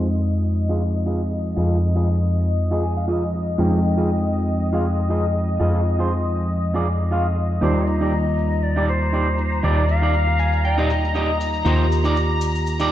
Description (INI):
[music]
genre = nu-disco, nu disco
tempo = 119 BPM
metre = 4/4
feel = swing 55% on 16ths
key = F dorian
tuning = A4 = 440 Hz
[part]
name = bell-like tine electric piano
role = accompaniment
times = 0.0-12.9 s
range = G3 to G5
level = -26 LUFS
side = equal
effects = none
[part]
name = lush unison pad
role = sustained chords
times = 0.0-12.9 s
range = Eb5 to Bb5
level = -29 LUFS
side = left 3 dB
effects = chorus
[part]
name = electric guitar at the edge of break-up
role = riff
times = 0.0-12.9 s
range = Eb4 to Ab5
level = -26 LUFS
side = right 2 dB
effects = lush chorus, low-pass filter, dub echo
[part]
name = fat analog bass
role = bass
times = 0.0-12.9 s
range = Eb2 to F2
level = -20 LUFS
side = equal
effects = tube saturation
[part]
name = breathy bright jazz flute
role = melody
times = 7.6-11.4 s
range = C5 to F5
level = -26 LUFS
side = left 2 dB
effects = dub echo
[part]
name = cabasa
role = percussion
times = 7.6-12.9 s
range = none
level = -44 LUFS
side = left 4 dB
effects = none
[sound]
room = moderate echo chamber reverb, RT60 1.8 s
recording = played on a big sound system in a bare room, stone room reverb, low-pass filter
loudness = -18 LUFS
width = side -12 dB against mid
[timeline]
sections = 0.0-12.9 A section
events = filter sweep 0.0-12.9; clean electric guitar fill 2.6-3.6, 10.1-11.7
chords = 0.0 Fm7; 7.6 Ebmaj7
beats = 0.06 0.56 1.07 | 1.57 2.08 2.58 3.09 | 3.59 4.09 4.60 5.10 | 5.61 6.11 6.62 7.12 | 7.62 8.13 8.63 9.14 | 9.64 10.14 10.65 11.15 | 11.66 12.16 12.67